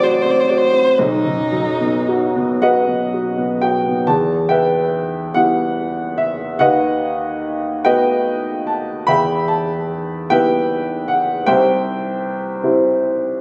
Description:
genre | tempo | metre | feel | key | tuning
classical, romantic duo for viola and grand piano | 35-52 BPM (dotted quarters) | 6/8 | rubato | E minor | A4 = 438 Hz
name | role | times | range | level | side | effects
dark viola | melody | 0.0-2.6 s | D#4 to D5 | -22 LUFS | equal | none
warm grand piano | accompaniment | 0.0-13.4 s | A1 to B5 | -18 LUFS | equal | none
room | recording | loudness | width
wet scoring stage reverb, RT60 1.4 s | recorded on a phone in the room, club reverb, compression | -17 LUFS | mono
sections
0.0-4.1 A section; 4.1-13.4 B section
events
none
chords
0.0 F#dim/A; 1.0 B; 4.1 Em; 6.6 B7/D#; 9.1 Em; 11.5 C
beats
| 0.98 2.62 | 4.08 5.36 | 6.61 7.85 | 9.08 10.30 | 11.47 12.63

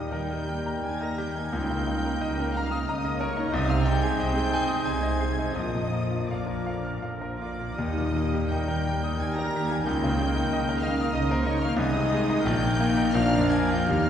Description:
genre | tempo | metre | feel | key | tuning
classical, romantic movement for piano and orchestra | 76-94 BPM | 3/4 | rubato | Eb major | A4 = 442 Hz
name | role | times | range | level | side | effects
bright grand piano | melody | 0.0-14.1 s | Bb1 to F6 | -29 LUFS | left 2 dB | none
muted studio violin section | melody | 0.0-14.1 s | C6 to Bb6 | -37 LUFS | left 1 dB | none
clear clarinet | second line | 0.0-14.1 s | D4 to F4 | -36 LUFS | right 1 dB | none
mellow hollow concert flute | second line | 0.0-14.1 s | C5 to Bb5 | -35 LUFS | equal | none
muted studio violin section | second line | 0.0-14.1 s | C5 to Bb5 | -38 LUFS | left 2 dB | none
warm oboe | second line | 0.0-14.1 s | Ab4 to C5 | -37 LUFS | right 1 dB | none
muted studio viola section | accompaniment | 0.0-14.1 s | D3 to Bb4 | -35 LUFS | right 1 dB | none
warm bassoon | accompaniment | 0.0-14.1 s | Eb3 to Bb3 | -38 LUFS | right 1 dB | none
dark French horn section | sustained chords | 0.0-14.1 s | Ab3 to G4 | -35 LUFS | left 1 dB | none
muted studio cello section | bass | 0.0-14.1 s | Bb2 to Eb3 | -33 LUFS | equal | none
muted studio double bass section | bass | 0.0-14.1 s | Bb1 to Eb2 | -32 LUFS | right 2 dB | none
room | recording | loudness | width
wet scoring stage reverb, RT60 1.9 s | heard from further back in the room | -24 LUFS | side -9 dB against mid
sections
0.0-14.1 A section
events
none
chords
0.0 Eb; 1.5 Eb7/Db; 3.5 Ab/C; 5.6 Bb; 7.8 Eb; 9.8 Eb7/Db; 11.8 Ab/C; 12.4 Eb/Bb; 13.1 Bb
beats
0.13 0.84 | 1.53 2.22 2.88 | 3.53 4.19 4.85 | 5.55 6.28 7.03 | 7.77 8.49 9.19 | 9.85 10.50 11.13 | 11.78 12.43 13.13 | 13.89

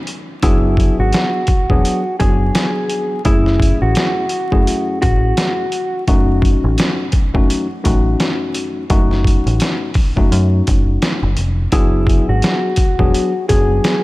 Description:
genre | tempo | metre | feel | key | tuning
hip hop, boom-bap hip-hop | 85 BPM | 4/4 | swing 59% on 16ths | unclear | A4 = 440 Hz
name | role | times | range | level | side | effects
trip hop sampler-style drum kit | drums | 0.1-14.0 s | hi-hat, kick drum, snare drum | -16 LUFS | equal | none
mellow electric guitar | melody | 0.4-6.0, 11.7-14.0 s | E4 to G#4 | -20 LUFS | equal | high-pass filter, low-pass filter, diffuse ambient delay
tine electric piano | accompaniment | 0.4-14.0 s | F#2 to G#4 | -20 LUFS | left 2 dB | overdrive, cassette tape, high-pass filter, low-pass filter
deep dub picked electric bass | bass | 0.4-13.8 s | E1 to Gb2 | -16 LUFS | equal | none
room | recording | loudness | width
light reverb, digital ambience | vinyl crackle | -13 LUFS | side -19 dB against mid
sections
0.0-14.0 A section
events
none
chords
0.4 E9 (rootless); 3.3 F#m9; 6.1 F7b9b13 (rootless); 11.7 E9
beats
| 0.43 1.14 1.84 2.55 | 3.25 3.96 4.67 5.37 | 6.08 6.78 7.49 8.20 | 8.90 9.61 10.31 11.02 | 11.72 12.43 13.14 13.84

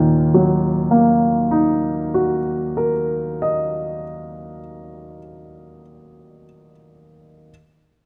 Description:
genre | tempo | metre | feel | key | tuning
classical | 37 BPM | 4/4 | rubato | Eb minor | A4 = 440 Hz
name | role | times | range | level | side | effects
warm grand piano | accompaniment | 0.0-7.5 s | Eb2 to Eb5 | -19 LUFS | equal | none
room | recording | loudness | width
moderate scoring stage reverb, RT60 1.7 s | none | -19 LUFS | mono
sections
0.0-5.2 A section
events
none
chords
0.0 Ebm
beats
0.34 1.97 3.59

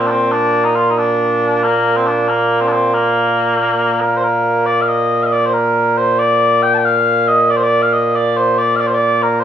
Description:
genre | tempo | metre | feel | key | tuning
scottish traditional, Scottish pipe music | 92 BPM (dotted quarters) | 6/8 | straight | Bb major | A4 = 440 Hz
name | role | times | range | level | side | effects
mellow small bagpipes | solo | 0.0-9.4 s | Bb2 to A5 | -12 LUFS | equal | none
room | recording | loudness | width
moderate large studio reverb, RT60 1.1 s | band playing live in one room | -12 LUFS | side -9 dB against mid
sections
0.0-4.2 A section; 4.2-9.4 B section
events
none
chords
none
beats
| 0.32 0.97 | 1.62 2.27 | 2.92 3.58 | 4.23 4.88 | 5.53 6.18 | 6.84 7.49 | 8.14 8.79

